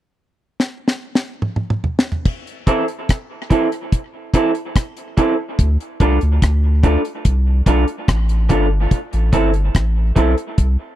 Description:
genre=dub reggae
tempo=72 BPM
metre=4/4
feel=straight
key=A minor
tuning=A4 = 440 Hz
part: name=deep reggae drum kit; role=drums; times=0.6-10.8 s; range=crash cymbal, hi-hat, kick drum, rim click, snare drum, toms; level=-16 LUFS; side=equal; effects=none
part: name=electric guitar through a small old amp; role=accompaniment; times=2.7-10.3 s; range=E3 to A4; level=-20 LUFS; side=right 2 dB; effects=tape echo
part: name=warm sub bass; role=bass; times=5.6-10.8 s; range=G1 to D2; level=-15 LUFS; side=equal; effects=none
room=studio ambience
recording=dry, close 1970s-style studio recording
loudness=-15 LUFS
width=side -13 dB against mid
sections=0.0-2.3 A section; 2.3-11.0 B section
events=drum fill 0.6-2.3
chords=0.0 N.C.; 2.3 Am; 5.6 Dm; 8.9 Am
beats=0.59 1.42 | 2.25 3.09 3.92 4.75 | 5.59 6.42 7.25 8.09 | 8.92 9.75 10.58

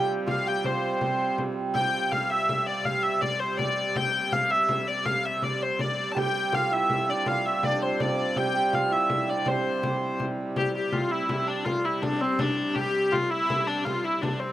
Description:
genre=medieval dance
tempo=163 BPM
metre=3/4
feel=straight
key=C major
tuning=A4 = 440 Hz
part: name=rich hurdy-gurdy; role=melody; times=0.0-14.5 s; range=C4 to A5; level=-26 LUFS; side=left 1 dB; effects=none
part: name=hammered dulcimer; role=second line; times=0.0-13.5 s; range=C4 to A4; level=-29 LUFS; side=right 3 dB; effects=none
part: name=rich hurdy-gurdy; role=drone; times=0.0-14.5 s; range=C3 to G3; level=-34 LUFS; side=right 2 dB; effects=none
part: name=frame drum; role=percussion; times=0.3-14.4 s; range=none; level=-33 LUFS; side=left 2 dB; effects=slapback echo
room=little or no reverb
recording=recorded outdoors, with no room sound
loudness=-24 LUFS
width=side -13 dB against mid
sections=0.0-1.7 A section; 1.7-10.6 B section; 10.6-14.5 B section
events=none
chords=none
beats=0.27 | 0.64 1.01 1.38 | 1.75 2.12 2.48 | 2.85 3.22 3.59 | 3.96 4.32 4.69 | 5.06 5.43 5.79 | 6.16 6.53 6.90 | 7.26 7.63 8.00 | 8.36 8.73 9.10 | 9.46 9.83 10.20 | 10.56 10.93 11.30 | 11.66 12.03 12.39 | 12.76 13.13 13.49 | 13.86 14.22

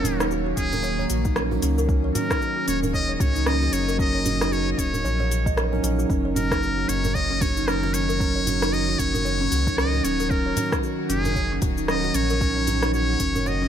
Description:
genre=organic downtempo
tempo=114 BPM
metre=4/4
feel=swing 58% on 16ths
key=Eb minor pentatonic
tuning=A4 = 437 Hz
part: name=trumpet with metal mute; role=melody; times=0.0-13.7 s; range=Ab4 to Eb5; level=-27 LUFS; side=left 1 dB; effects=ping-pong delay
part: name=mellow tine electric piano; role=accompaniment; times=0.0-13.7 s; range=Gb3 to Bb4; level=-29 LUFS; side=right 5 dB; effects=sidechain pumping, ping-pong delay
part: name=bowed-like drone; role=sustained chords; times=0.0-13.7 s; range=Eb3 to Eb5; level=-32 LUFS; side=equal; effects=built-in reverb, sidechain pumping
part: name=kalimba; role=arpeggios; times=0.0-13.7 s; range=Db4 to Eb5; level=-28 LUFS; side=left 1 dB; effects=ping-pong delay
part: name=warm sub bass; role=bass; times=0.0-13.7 s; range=Eb1 to Db2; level=-26 LUFS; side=equal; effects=sidechain pumping
part: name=deep house drum kit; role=drums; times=0.0-13.6 s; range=cabasa, hi-hat, rim click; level=-29 LUFS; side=equal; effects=overdrive
part: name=djembe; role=percussion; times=0.0-13.7 s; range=none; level=-33 LUFS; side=right 3 dB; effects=none
part: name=electronic kick drum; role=drums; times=0.6-13.3 s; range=none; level=-26 LUFS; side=equal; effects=overdrive
room=light reverb, digital ambience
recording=none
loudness=-20 LUFS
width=side -9 dB against mid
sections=0.0-13.7 A section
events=none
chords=0.0 Ebm7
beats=0.31 0.83 1.36 | 1.89 2.41 2.94 3.47 | 3.99 4.52 5.04 5.57 | 6.10 6.62 7.15 7.68 | 8.20 8.73 9.26 9.78 | 10.31 10.84 11.36 11.89 | 12.41 12.94 13.47

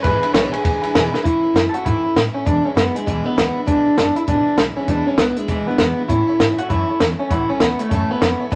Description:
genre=rockabilly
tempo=198 BPM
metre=4/4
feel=swing 61% on 8ths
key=A major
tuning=A4 = 440 Hz
part: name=electric guitar through a small old amp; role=melody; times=0.0-8.6 s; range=G#3 to C#5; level=-21 LUFS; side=equal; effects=none
part: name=honky-tonk upright piano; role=accompaniment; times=0.0-1.2, 6.1-8.6 s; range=B4 to B5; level=-32 LUFS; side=equal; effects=none
part: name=picked steel-string acoustic guitar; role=accompaniment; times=0.0-8.6 s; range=E2 to E4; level=-29 LUFS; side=equal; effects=none
part: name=upright bass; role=bass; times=0.0-8.6 s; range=F#1 to A2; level=-28 LUFS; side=equal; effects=none
part: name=compact cocktail drum kit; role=drums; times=0.0-8.6 s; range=hi-hat, kick drum, ride cymbal, snare drum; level=-21 LUFS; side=equal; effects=none
room=light reverb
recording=none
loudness=-18 LUFS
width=mono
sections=0.0-1.3 A section; 1.3-8.6 B section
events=honky-tonk piano fill 0.8-1.3; drum fill 1.1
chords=0.0 E7; 1.3 A; 2.5 E7; 6.1 A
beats=| 0.05 0.35 0.65 0.95 | 1.25 1.55 1.86 2.16 | 2.46 2.76 3.07 3.37 | 3.67 3.97 4.28 4.58 | 4.88 5.18 5.49 5.79 | 6.09 6.40 6.70 7.00 | 7.30 7.61 7.91 8.21 | 8.52

